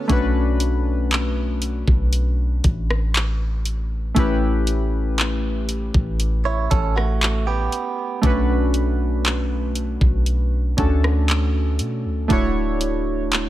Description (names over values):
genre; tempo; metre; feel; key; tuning
contemporary R&B; 59 BPM; 4/4; straight; B minor; A4 = 440 Hz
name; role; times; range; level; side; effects
warm analog keys; accompaniment; 0.0-13.5 s; A3 to C#5; -24 LUFS; equal; chorus
direct-recorded clean electric guitar; arpeggios; 0.0-0.1, 6.5-8.2 s; A3 to C#5; -26 LUFS; right 7 dB; spring reverb, tape echo
soft 808-style bass; bass; 0.1-13.5 s; D1 to B2; -21 LUFS; equal; none
smooth R&B drum kit; drums; 0.1-13.5 s; handclaps, hi-hat, kick drum, rim click; -22 LUFS; equal; none
room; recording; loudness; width
digital ambience; none; -18 LUFS; side -14 dB against mid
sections
0.1-13.5 A section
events
none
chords
0.1 Bm9; 4.2 A9; 8.2 Bm9; 12.3 Dmaj9